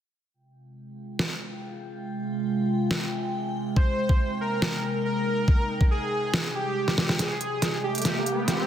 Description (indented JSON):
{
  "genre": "heavy wobble dubstep",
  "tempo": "140 BPM",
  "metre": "4/4",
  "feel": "swing 53% on 16ths, half-time",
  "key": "F minor",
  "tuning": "A4 = 440 Hz",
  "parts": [
    { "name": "evolving wavetable pad", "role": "sustained chords", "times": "0.9-8.7 s", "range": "C3 to G5", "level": "-30 LUFS", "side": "equal", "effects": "phaser, built-in reverb, sidechain pumping" },
    { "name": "dubstep drum kit", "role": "drums", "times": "1.2-8.6 s", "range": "hi-hat, snare drum", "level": "-27 LUFS", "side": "equal", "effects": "soft clipping on snare, small room reverb" },
    { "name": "soft supersaw", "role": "melody", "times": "3.8-8.7 s", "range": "G4 to C5", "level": "-28 LUFS", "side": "right 1 dB", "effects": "vintage 12-bit sampler grit, dub echo" },
    { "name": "electronic kick drum", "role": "drums", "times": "3.8-5.9 s", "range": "none", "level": "-20 LUFS", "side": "equal", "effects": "overdrive, small room reverb" },
    { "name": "riser", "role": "sound effects", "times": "7.5-8.7 s", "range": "none", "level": "-31 LUFS", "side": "equal", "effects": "none" }
  ],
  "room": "light reverb",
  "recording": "dense, heavily limited modern master",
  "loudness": "-24 LUFS",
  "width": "side -10 dB against mid",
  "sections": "0.3-7.2 A section; 7.2-8.7 B section",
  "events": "filter sweep on ambient pad 0.3-7.2; drum fill 6.9-7.2, 7.2-8.7; build-up 7.2-8.7; riser 7.5-8.7",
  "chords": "0.3 Fmadd9"
}